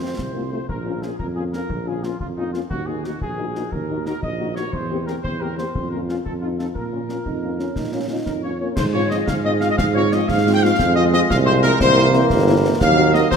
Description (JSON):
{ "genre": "military-style march for wind band", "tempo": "119 BPM (dotted quarters)", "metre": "6/8", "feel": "straight", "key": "Bb minor, F minor from 8.8 s", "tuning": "A4 = 440 Hz", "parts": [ { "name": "mellow trumpet section", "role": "melody", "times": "0.0-13.4 s", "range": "Eb4 to G5", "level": "-24 LUFS", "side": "equal", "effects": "none" }, { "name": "warm euphonium", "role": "second line", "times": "0.0-0.6, 7.3-8.8 s", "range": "A3 to Eb4", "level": "-30 LUFS", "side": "right 5 dB", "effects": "none" }, { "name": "dark French horn section", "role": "accompaniment", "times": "0.0-13.2 s", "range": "F3 to G4", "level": "-26 LUFS", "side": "left 6 dB", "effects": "none" }, { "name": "warm tuba", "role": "bass", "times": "0.0-13.4 s", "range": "G1 to Bb2", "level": "-21 LUFS", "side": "right 3 dB", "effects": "none" }, { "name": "concert snare drum, concert bass drum and clash cymbals", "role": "drums", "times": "0.2-13.4 s", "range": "none", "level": "-28 LUFS", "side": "left 1 dB", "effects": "none" }, { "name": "mellow small flute group", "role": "second line", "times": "8.3-13.4 s", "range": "Bb4 to G5", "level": "-24 LUFS", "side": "left 6 dB", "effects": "none" }, { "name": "mellow trombone section", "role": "sustained chords", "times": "8.8-13.4 s", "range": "E3 to Bb3", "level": "-23 LUFS", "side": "right 3 dB", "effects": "none" } ], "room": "moderate concert hall reverb, RT60 2.4 s", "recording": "none", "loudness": "-18 LUFS", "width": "side -6 dB against mid", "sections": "0.0-8.8 A section; 8.8-13.4 B section", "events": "none", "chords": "0.0 F; 0.7 Bbm; 2.7 Ebm; 4.7 C7/E; 5.7 Bbm/F; 6.3 F5; 6.8 Bbm; 8.8 Fm/Ab; 10.8 Fm; 11.8 C7; 12.8 Cm7b5/Eb" }